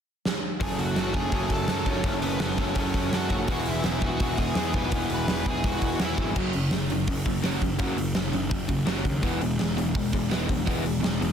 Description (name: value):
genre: punk rock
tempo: 167 BPM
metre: 4/4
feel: straight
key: unclear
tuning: A4 = 439 Hz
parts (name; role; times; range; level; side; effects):
- big rock drum kit; drums; 0.3-11.3 s; crash cymbal, hi-hat, kick drum, snare drum; -28 LUFS; equal; none
- bluesy overdriven lead guitar; melody; 0.6-6.3 s; B3 to B5; -32 LUFS; equal; distortion, digital delay
- biting overdriven guitar; riff; 0.6-11.3 s; F#2 to A4; -30 LUFS; left 11 dB; none
- overdriven electric guitar; riff; 0.6-11.3 s; E2 to F#3; -30 LUFS; right 11 dB; none
- fuzz picked electric bass; bass; 0.6-11.3 s; E1 to F#2; -31 LUFS; equal; overdrive
room: light reverb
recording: dense, heavily limited modern master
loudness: -24 LUFS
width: side -8 dB against mid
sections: 0.6-6.4 A section; 6.4-11.3 B section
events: drum fill 0.2-0.6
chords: 0.0 N.C.; 0.6 F#m; 3.5 E; 6.4 F#5; 9.2 E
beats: 0.25 | 0.61 0.97 1.33 1.69 | 2.05 2.41 2.77 3.13 | 3.48 3.84 4.20 4.56 | 4.92 5.28 5.64 6.00 | 6.36 6.72 7.08 7.43 | 7.79 8.15 8.51 8.87 | 9.23 9.59 9.95 10.30 | 10.66 11.02